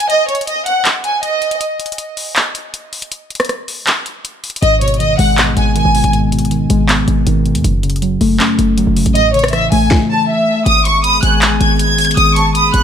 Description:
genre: hip hop, trap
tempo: 159 BPM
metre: 4/4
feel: half-time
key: G# phrygian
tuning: A4 = 441 Hz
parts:
  - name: warm symphonic violin section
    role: melody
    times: 0.0-1.6, 4.6-6.1, 9.2-12.8 s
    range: C#5 to G#6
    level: -14 LUFS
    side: equal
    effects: ping-pong delay
  - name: trap drum kit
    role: drums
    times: 0.0-12.8 s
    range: handclaps, hi-hat, kick drum, rim click, snare drum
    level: -18 LUFS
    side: equal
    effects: none
  - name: muted felt-like synth keys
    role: accompaniment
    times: 4.6-10.7 s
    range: F#2 to C#4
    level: -15 LUFS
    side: left 1 dB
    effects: chorus
  - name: short 808-style bass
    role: bass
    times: 4.6-12.8 s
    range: F#1 to D#2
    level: -16 LUFS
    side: equal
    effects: none
  - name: dark analog pad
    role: sustained chords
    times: 10.7-12.8 s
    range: D#3 to G#4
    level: -18 LUFS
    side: left 2 dB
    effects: chorus
  - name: mellow concert flute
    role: second line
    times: 11.0-12.8 s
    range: G#5 to B5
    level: -21 LUFS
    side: right 1 dB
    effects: ping-pong delay
room: digital ambience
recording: none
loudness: -11 LUFS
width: side -8 dB against mid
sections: 0.0-10.7 A section; 10.7-12.8 B section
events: break 0.0-4.6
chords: 0.0 N.C.; 4.6 G#m; 7.6 F#m; 9.2 A; 10.7 G#m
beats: | 0.10 0.47 0.85 1.23 | 1.61 1.98 2.36 2.74 | 3.12 3.49 3.87 4.25 | 4.62 5.00 5.38 5.76 | 6.13 6.51 6.89 7.27 | 7.64 8.02 8.40 8.78 | 9.15 9.53 9.91 10.29 | 10.66 11.04 11.42 11.79 | 12.17 12.55

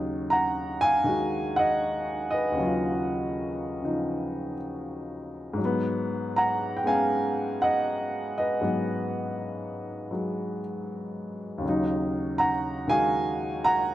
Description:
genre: solo jazz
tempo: 80 BPM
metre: 4/4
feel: swing 67% on 8ths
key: Eb minor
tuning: A4 = 439 Hz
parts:
  - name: warm upright piano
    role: solo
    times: 0.0-13.9 s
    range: Eb2 to Bb5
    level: -25 LUFS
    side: equal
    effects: none
room: light reverb, studio reverb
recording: rough home demo mix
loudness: -25 LUFS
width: side -13 dB against mid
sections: 0.0-13.9 A section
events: none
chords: 0.0 Ebm9; 5.6 Abm7; 11.6 Ebm9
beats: 0.30 1.06 1.81 | 2.57 3.33 4.08 4.84 | 5.59 6.35 7.10 7.86 | 8.61 9.37 10.12 10.88 | 11.63 12.38 13.13 13.89

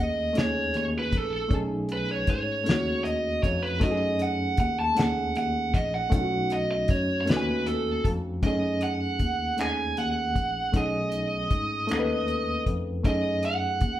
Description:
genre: slow six-eight R&B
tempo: 52 BPM (dotted quarters)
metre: 6/8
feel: straight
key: F# dorian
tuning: A4 = 440 Hz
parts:
  - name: high-gain lead guitar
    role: melody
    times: 0.0-14.0 s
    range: A4 to A5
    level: -28 LUFS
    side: right 2 dB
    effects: distortion
  - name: reed electric piano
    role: accompaniment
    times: 0.0-14.0 s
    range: G#3 to G#5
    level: -31 LUFS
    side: equal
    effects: none
  - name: overdriven tine electric piano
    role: bass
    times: 0.0-14.0 s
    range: A#1 to G#2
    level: -31 LUFS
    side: left 1 dB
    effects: medium tremolo
  - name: cloth-damped thuddy drum kit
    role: drums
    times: 0.4-14.0 s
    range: finger snaps, hi-hat, kick drum, snare drum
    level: -26 LUFS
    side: left 1 dB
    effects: none
room: moderate large studio reverb, RT60 0.8 s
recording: band playing live in one room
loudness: -24 LUFS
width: side -12 dB against mid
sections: 0.0-8.4 A section; 8.4-14.0 B section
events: lead electric guitar solo 0.0-8.4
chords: 0.0 F#m69 (rootless); 1.5 B13; 3.8 F#m69; 6.1 B7; 8.4 F#m69; 10.7 B13; 13.0 F#m69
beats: 0.35 | 1.51 2.66 | 3.81 4.97 | 6.12 7.28 | 8.43 9.58 | 10.74 11.89 | 13.04

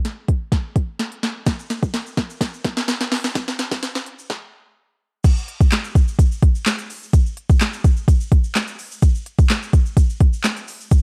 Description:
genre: pop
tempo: 127 BPM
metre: 4/4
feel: straight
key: none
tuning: none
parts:
  - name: smooth R&B drum kit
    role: drums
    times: 0.0-11.0 s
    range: crash cymbal, handclaps, hi-hat, kick drum, snare drum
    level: -19 LUFS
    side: equal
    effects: overdrive
  - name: tube shaker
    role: percussion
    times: 1.5-11.0 s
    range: none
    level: -41 LUFS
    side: equal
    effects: none
room: little or no reverb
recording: dark, warm production, high-pass filter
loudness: -19 LUFS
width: mono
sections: 0.0-5.2 A section; 5.2-11.0 B section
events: build-up 0.0-5.2; drum fill 0.0-4.3; filter sweep 0.0-5.2; stop 4.3-5.2; drop 5.2-11.0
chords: none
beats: 0.05 0.52 0.99 | 1.47 1.94 2.41 2.88 | 3.35 3.83 4.30 4.77 | 5.25 5.72 6.19 6.66 | 7.13 7.61 8.08 8.55 | 9.03 9.50 9.97 10.44 | 10.91

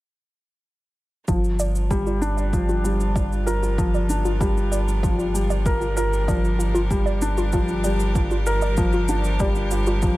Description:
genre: piano and strings electronica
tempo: 96 BPM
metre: 4/4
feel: straight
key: G minor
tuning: A4 = 442 Hz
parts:
  - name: bright string quartet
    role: sustained chords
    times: 1.3-10.2 s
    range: G3 to Bb4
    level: -36 LUFS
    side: right 1 dB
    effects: sidechain pumping
  - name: warbly dusty pluck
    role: arpeggios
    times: 1.3-9.9 s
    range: F4 to D5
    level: -29 LUFS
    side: right 1 dB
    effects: chorus, vintage 12-bit sampler grit, sidechain pumping, tape echo
  - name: felt-muted upright piano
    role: riff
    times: 1.3-10.2 s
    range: F3 to Bb4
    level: -24 LUFS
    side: left 1 dB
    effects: tape echo
  - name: warm sub bass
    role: bass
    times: 1.3-10.2 s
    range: G1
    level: -24 LUFS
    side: equal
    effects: sidechain pumping
  - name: electronic kick drum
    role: drums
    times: 1.3-10.2 s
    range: none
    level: -24 LUFS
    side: equal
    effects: overdrive, studio ambience
  - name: shaker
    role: drums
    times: 1.3-10.2 s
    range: none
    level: -36 LUFS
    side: right 1 dB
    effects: overdrive, studio ambience
room: small room ambience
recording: none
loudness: -19 LUFS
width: side -17 dB against mid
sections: 1.3-10.2 A section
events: fade-in on string quartet 1.3-10.2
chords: 1.3 Gm7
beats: | 1.28 1.91 2.53 3.16 | 3.78 4.41 5.03 5.66 | 6.28 6.91 7.53 8.16 | 8.78 9.41 10.03

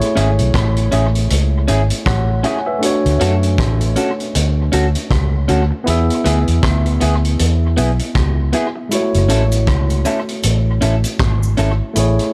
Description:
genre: lovers rock reggae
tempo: 79 BPM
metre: 4/4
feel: swing 59% on 16ths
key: F# minor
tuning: A4 = 440 Hz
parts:
  - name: tine electric piano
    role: accompaniment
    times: 0.0-12.3 s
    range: G#3 to G#5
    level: -23 LUFS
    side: equal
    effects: overdrive, dub echo
  - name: vintage drum kit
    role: drums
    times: 0.0-12.3 s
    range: hi-hat, kick drum, rim click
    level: -24 LUFS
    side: equal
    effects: dub echo
  - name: electric guitar through a small old amp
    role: stabs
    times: 0.2-11.7 s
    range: B3 to A4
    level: -23 LUFS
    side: equal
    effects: none
  - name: vintage muted fingered electric bass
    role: bass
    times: 0.2-12.2 s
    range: F#1 to F#2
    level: -18 LUFS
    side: equal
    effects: none
  - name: cabasa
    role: percussion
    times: 8.9-12.2 s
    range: none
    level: -36 LUFS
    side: equal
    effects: none
room: small room ambience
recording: none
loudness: -16 LUFS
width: mono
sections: 0.0-12.3 A section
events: none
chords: 0.0 Amaj7; 2.8 Dmaj7; 5.9 E; 8.9 F#m7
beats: 0.54 1.30 2.06 | 2.82 3.58 4.35 5.11 | 5.87 6.63 7.39 8.15 | 8.91 9.67 10.44 11.20 | 11.96

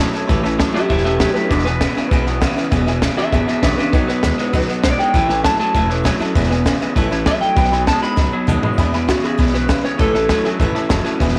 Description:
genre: rockabilly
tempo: 198 BPM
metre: 4/4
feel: straight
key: E major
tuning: A4 = 440 Hz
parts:
  - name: honky-tonk upright piano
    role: accompaniment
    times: 0.0-11.4 s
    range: B4 to C#6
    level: -31 LUFS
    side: equal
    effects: none
  - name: picked steel-string acoustic guitar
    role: accompaniment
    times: 0.0-11.4 s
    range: E2 to F#4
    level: -28 LUFS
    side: equal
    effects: none
  - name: electric guitar through a small old amp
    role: riff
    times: 0.0-11.4 s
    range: E2 to G#3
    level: -23 LUFS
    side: equal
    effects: spring reverb
  - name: upright bass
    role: bass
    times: 0.1-11.4 s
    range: E1 to E2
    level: -24 LUFS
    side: equal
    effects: none
  - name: compact cocktail drum kit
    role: drums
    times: 0.1-11.4 s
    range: hi-hat, kick drum, snare drum, toms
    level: -22 LUFS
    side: equal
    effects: none
  - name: electric guitar through a small old amp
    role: melody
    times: 0.7-10.6 s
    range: D4 to B5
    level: -22 LUFS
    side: equal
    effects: tape echo
room: light reverb, small room ambience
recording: none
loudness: -17 LUFS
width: mono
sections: 0.0-8.8 A section; 8.8-11.4 A section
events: drum fill 8.2-8.8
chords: 0.0 A; 1.5 E; 3.9 B; 5.1 A; 6.4 E; 7.0 A; 7.6 B; 8.8 E; 10.0 A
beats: | 0.29 0.60 0.90 1.20 | 1.50 1.81 2.11 2.41 | 2.72 3.02 3.32 3.62 | 3.93 4.23 4.53 4.84 | 5.14 5.44 5.75 6.05 | 6.35 6.66 6.96 7.26 | 7.57 7.87 8.17 8.48 | 8.78 9.08 9.39 9.69 | 9.99 10.30 10.60 10.90 | 11.21

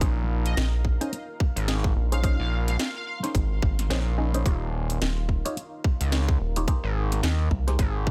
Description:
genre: glitch hop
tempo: 108 BPM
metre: 4/4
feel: swing 59% on 16ths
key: Bb dorian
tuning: A4 = 440 Hz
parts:
  - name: muted clav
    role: stabs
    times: 0.0-8.1 s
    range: Db4 to Eb5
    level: -36 LUFS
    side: equal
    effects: phaser, sidechain pumping, digital delay
  - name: gritty driven synth bass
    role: bass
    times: 0.0-8.1 s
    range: Eb1 to Eb2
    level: -27 LUFS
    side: equal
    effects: none
  - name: drum and bass drum kit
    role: drums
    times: 0.0-7.9 s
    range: hi-hat, snare drum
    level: -34 LUFS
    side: equal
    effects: overdrive, studio reverb
  - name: electronic kick drum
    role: drums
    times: 0.0-8.1 s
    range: none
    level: -27 LUFS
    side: equal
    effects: overdrive, studio reverb
  - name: deep dark ambient pad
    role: texture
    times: 0.0-8.1 s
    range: Ab3 to C6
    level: -42 LUFS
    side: equal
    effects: chorus, built-in reverb, sidechain pumping
  - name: sync lead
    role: melody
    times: 0.5-3.2 s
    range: Eb5 to F5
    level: -38 LUFS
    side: equal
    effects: ensemble chorus, digital delay
  - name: rubbery square bass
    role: bass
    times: 0.6-7.8 s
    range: Eb1 to C2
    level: -28 LUFS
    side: equal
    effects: none
room: digital ambience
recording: none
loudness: -26 LUFS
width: mono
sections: 0.0-8.1 A section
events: none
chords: 0.0 Bbm11; 4.5 Eb9; 6.7 Abmaj7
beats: | 0.01 0.57 1.12 1.68 | 2.23 2.79 3.35 3.90 | 4.46 5.01 5.57 6.12 | 6.68 7.23 7.79

